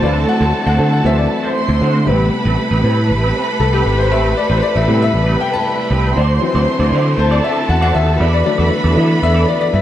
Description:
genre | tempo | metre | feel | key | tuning
disco | 117 BPM | 4/4 | straight | A dorian | A4 = 438 Hz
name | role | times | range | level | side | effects
warm studio violin section | second line | 0.0-9.8 s | A4 to C6 | -20 LUFS | right 2 dB | none
bright grand piano | accompaniment | 0.0-9.8 s | C3 to A5 | -19 LUFS | left 6 dB | none
semi-hollow electric guitar | accompaniment | 0.0-9.8 s | C4 to D5 | -24 LUFS | right 3 dB | wah
clear studio string section | sustained chords | 0.0-9.8 s | D3 to B4 | -21 LUFS | right 1 dB | none
picked electric bass | bass | 0.0-9.8 s | G#1 to E3 | -15 LUFS | right 1 dB | none
room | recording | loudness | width
little or no reverb | dry, close 1970s-style studio recording | -12 LUFS | side -12 dB against mid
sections
0.0-9.8 A section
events
grand piano solo 0.0-9.8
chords
0.0 D7; 2.1 Am9; 6.2 D7; 8.2 E7sus4

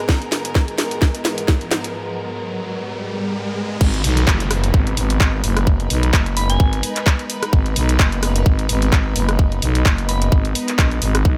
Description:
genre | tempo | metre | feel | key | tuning
bass house | 129 BPM | 4/4 | swing 56% on 16ths | G# minor | A4 = 440 Hz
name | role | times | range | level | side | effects
warm studio string section | sustained chords | 0.0-11.4 s | G#2 to B4 | -31 LUFS | equal | sidechain pumping
riser and downlifter | sound effects | 0.4-7.5 s | none | -31 LUFS | equal | none
ethereal airy pad | texture | 0.0-11.4 s | B3 to A#5 | -33 LUFS | equal | ensemble chorus, built-in reverb, sidechain pumping
electronic kick drum | drums | 0.1-11.4 s | none | -18 LUFS | equal | none
garage drum kit | drums | 0.1-11.2 s | crash cymbal, handclaps, hi-hat, rim click, snare drum | -24 LUFS | equal | none
growling FM bass | bass | 3.8-11.4 s | F#1 to B1 | -21 LUFS | equal | tube saturation, sidechain pumping
soft synth bell | melody | 6.4-7.0, 10.1-10.2 s | G#5 to B5 | -30 LUFS | equal | chorus, phaser, tape echo
room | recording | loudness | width
digital ambience | none | -18 LUFS | mono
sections
0.0-3.8 A section; 3.8-11.4 B section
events
build-up 0.0-3.8; drum fill 0.0-1.9; riser 0.4-3.8; break 1.9-3.8; drop 3.8-11.4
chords
0.0 G#madd9

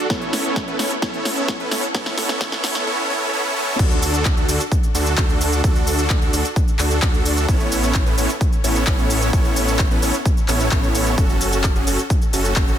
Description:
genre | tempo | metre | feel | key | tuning
EDM, festival progressive house | 130 BPM | 4/4 | straight | A major | A4 = 440 Hz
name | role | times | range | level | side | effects
supersaw chords | riff | 0.0-12.8 s | B3 to C#5 | -21 LUFS | right 1 dB | sidechain pumping, low-pass filter, ping-pong delay
big-room dance drum kit | drums | 0.1-12.8 s | crash cymbal, handclaps, hi-hat, shaker, snare drum | -24 LUFS | left 1 dB | none
electronic kick drum | drums | 0.1-12.7 s | none | -19 LUFS | equal | none
wide detuned saw bass | bass | 3.8-12.8 s | F#1 to D2 | -22 LUFS | equal | chorus, sidechain pumping
room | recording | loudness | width
light reverb, digital ambience | dense, heavily limited modern master, high-pass filter | -16 LUFS | side -10 dB against mid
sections
0.0-3.8 A section; 3.8-12.8 B section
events
build-up 0.0-3.8; drum fill 0.0-2.9; drop 3.8-12.8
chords
0.1 Aadd9; 3.8 D; 7.5 Aadd9; 11.2 F#m

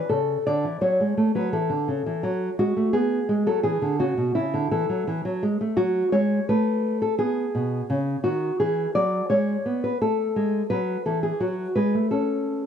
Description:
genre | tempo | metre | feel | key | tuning
classical, baroque-style dance for nylon-string guitar | 85 BPM | 4/4 | rubato | unclear | A4 = 440 Hz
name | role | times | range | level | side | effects
nylon-string guitar | solo | 0.0-12.6 s | B2 to D5 | -21 LUFS | equal | none
room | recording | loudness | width
light reverb, studio reverb | dry, close 1970s-style studio recording | -21 LUFS | side -8 dB against mid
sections
0.0-12.7 A section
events
none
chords
0.1 A/C#; 2.9 G#dim; 4.4 A5; 5.8 F#m; 7.2 B; 8.6 E; 10.0 A5; 11.4 F#m

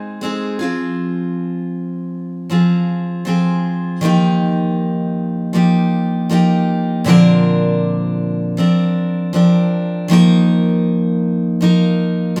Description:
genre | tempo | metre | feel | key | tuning
pop | 79 BPM | 4/4 | straight | unclear | A4 = 440 Hz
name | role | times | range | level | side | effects
picked steel-string acoustic guitar | solo | 0.0-12.4 s | Bb2 to Bb4 | -16 LUFS | equal | none
room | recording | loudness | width
moderate studio reverb, RT60 0.5 s | band playing live in one room | -16 LUFS | mono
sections
0.0-10.1 A section; 10.1-12.4 B section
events
none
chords
0.0 Ab; 0.6 Fm; 4.0 Ebadd9; 7.1 Bbadd9; 10.1 Ebsus2

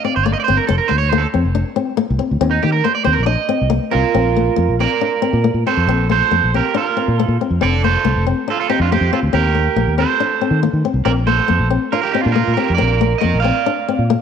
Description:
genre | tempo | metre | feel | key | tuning
highlife guitar band | 139 BPM | 4/4 | straight | Bb major | A4 = 438 Hz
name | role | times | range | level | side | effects
electric guitar at the edge of break-up | melody | 0.0-14.0 s | C4 to F5 | -18 LUFS | right 9 dB | spring reverb
flamenco guitar | accompaniment | 0.0-14.2 s | Bb3 to D4 | -20 LUFS | left 10 dB | none
fingered electric bass | bass | 0.2-14.1 s | F1 to Eb3 | -17 LUFS | equal | none
room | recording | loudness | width
moderate echo chamber reverb, RT60 1.9 s, small room ambience | 1960s-style stereo with parts hard left and right | -14 LUFS | side -7 dB against mid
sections
0.0-4.2 A section; 4.2-14.2 B section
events
clean electric guitar solo 0.0-4.2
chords
0.0 Bb; 0.7 F5; 2.4 Eb5; 4.2 Bb; 7.6 F; 9.3 Eb6; 11.1 Bb

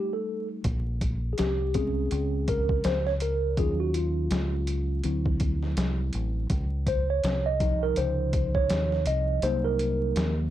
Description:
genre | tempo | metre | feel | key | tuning
hip hop, jazz-hop | 82 BPM | 4/4 | swing 59% on 16ths | unclear | A4 = 440 Hz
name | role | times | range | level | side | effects
mellow tine electric piano | accompaniment | 0.0-10.5 s | C3 to Eb5 | -28 LUFS | right 1 dB | medium stereo tremolo
trip hop sampler-style drum kit | drums | 0.6-10.4 s | hi-hat, kick drum, snare drum | -30 LUFS | equal | overdrive
deep dub fingered electric bass | bass | 0.7-10.5 s | A1 to Eb2 | -28 LUFS | equal | none
room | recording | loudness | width
little or no reverb | dark, warm production, vinyl crackle | -24 LUFS | side -12 dB against mid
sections
0.6-10.5 A section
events
break 0.0-0.6; tine electric piano solo 0.6-10.5; kick muted 9.4-10.5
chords
0.0 F7 (rootless); 0.6 Bbm7; 3.6 Ebm7; 5.0 D9; 6.5 Dbmaj9; 9.4 Cm7b5

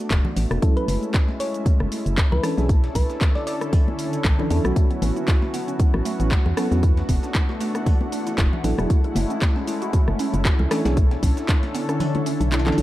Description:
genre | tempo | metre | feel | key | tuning
deep house | 116 BPM | 4/4 | swing 56% on 16ths | B dorian | A4 = 440 Hz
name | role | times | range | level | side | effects
warm analog pad | sustained chords | 0.0-12.8 s | G#3 to A4 | -30 LUFS | left 1 dB | chorus, vintage 12-bit sampler grit, sidechain pumping
granular cloud pad | texture | 0.0-12.8 s | D3 to A5 | -32 LUFS | left 2 dB | built-in reverb, sidechain pumping
organ-like FM bass | bass | 0.1-12.8 s | E1 to E2 | -23 LUFS | equal | sidechain pumping
breakbeat sampler-style drum kit | drums | 0.1-12.8 s | hi-hat, snare drum, tambourine | -40 LUFS | equal | none
electronic kick drum | drums | 0.1-11.6 s | none | -19 LUFS | equal | studio reverb
house drum kit | drums | 0.1-12.8 s | handclaps, hi-hat, rim click, shaker | -30 LUFS | equal | studio reverb
congas | percussion | 0.1-12.8 s | none | -33 LUFS | left 2 dB | none
mellow FM electric piano | stabs | 0.6-12.8 s | E3 to A4 | -26 LUFS | equal | chorus, sidechain pumping, tape echo
thumb-piano-like synth pluck | melody | 0.8-3.6 s | B4 to D5 | -30 LUFS | equal | chorus, cassette tape, analog delay
mallet-like synth pluck | arpeggios | 4.8-12.8 s | A3 to A4 | -31 LUFS | right 4 dB | chorus, sidechain pumping, analog delay
room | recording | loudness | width
digital ambience | cassette tape | -19 LUFS | side -15 dB against mid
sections
0.0-12.8 A section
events
fade-in on ambient pad 0.0-12.8; kick drops out 12.0-12.8; drum fill 12.7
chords
0.0 E9sus4; 0.6 F#m7; 2.4 Bm11; 4.8 A69; 6.8 E9sus4; 8.9 F#m7; 10.7 Bm11

